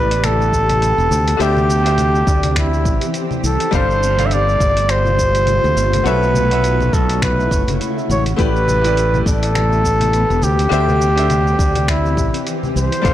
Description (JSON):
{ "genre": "sunset chillout", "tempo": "103 BPM", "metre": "4/4", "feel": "swing 57% on 16ths", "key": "unclear", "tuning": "A4 = 440 Hz", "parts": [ { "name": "warm flugelhorn", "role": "melody", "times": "0.0-13.1 s", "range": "E4 to E5", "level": "-18 LUFS", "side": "equal", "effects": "tape echo" }, { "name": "bright baby grand piano", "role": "accompaniment", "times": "0.0-13.1 s", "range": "D3 to F5", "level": "-24 LUFS", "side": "moving between left 7 dB and right 3 dB", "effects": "auto-pan" }, { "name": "shimmering ambient pad", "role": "sustained chords", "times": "0.0-13.1 s", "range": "C3 to G4", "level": "-25 LUFS", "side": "equal", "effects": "chorus, built-in reverb" }, { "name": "concert harp", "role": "arpeggios", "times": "0.0-13.1 s", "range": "F#4 to F5", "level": "-29 LUFS", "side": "left 4 dB", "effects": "tape echo" }, { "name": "modern bright fingered electric bass", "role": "bass", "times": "0.0-13.1 s", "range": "E1 to D2", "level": "-18 LUFS", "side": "equal", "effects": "tube saturation" }, { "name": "dusty soul sampler-style drum kit", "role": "drums", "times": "0.1-13.1 s", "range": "cabasa, congas, finger snaps, hi-hat", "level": "-25 LUFS", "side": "left 2 dB", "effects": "studio ambience" }, { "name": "electronic kick drum", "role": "drums", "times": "0.5-13.1 s", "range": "none", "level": "-19 LUFS", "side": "equal", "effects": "studio ambience" } ], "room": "light reverb", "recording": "dry, gritty hardware recording", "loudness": "-13 LUFS", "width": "side -12 dB against mid", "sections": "0.0-13.1 A section", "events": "none", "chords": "0.0 A9sus4; 1.1 D9sus4; 3.7 G9sus4; 6.1 B9sus4; 8.4 A9sus4; 10.4 D9sus4", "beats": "0.23 0.81 | 1.40 1.98 2.56 3.14 | 3.73 4.31 4.89 5.47 | 6.06 6.64 7.22 7.80 | 8.39 8.97 9.55 10.13 | 10.72 11.30 11.88 12.46 | 13.05" }